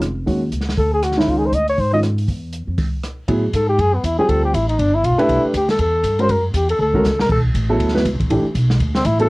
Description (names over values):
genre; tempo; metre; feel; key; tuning
jazz, small-group swing and bop; 239 BPM; 4/4; swing 60% on 8ths; Db major; A4 = 440 Hz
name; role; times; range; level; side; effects
upright bass; bass; 0.0-9.3 s; F1 to A2; -20 LUFS; equal; none
open jazz drum kit; drums; 0.0-9.2 s; crash cymbal, hi-hat, kick drum, ride cymbal, rim click, snare drum; -24 LUFS; equal; none
warm grand piano; accompaniment; 0.3-9.3 s; Eb3 to B4; -19 LUFS; right 1 dB; cassette tape
breathy flugelhorn; melody; 0.8-9.3 s; B3 to Eb5; -18 LUFS; left 1 dB; none
room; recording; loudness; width
light reverb; home recording on cassette; -15 LUFS; side -22 dB against mid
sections
0.0-3.3 A section; 3.3-9.3 B section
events
drum fill 7.0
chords
0.3 Ebm7; 0.8 Dmaj7#11; 1.3 Dbsus2; 2.3 N.C.; 3.3 Asus2; 4.3 Dm7; 4.8 G; 5.3 C69; 6.3 F#7b13; 7.3 Bm7; 8.3 Asus2; 8.8 D69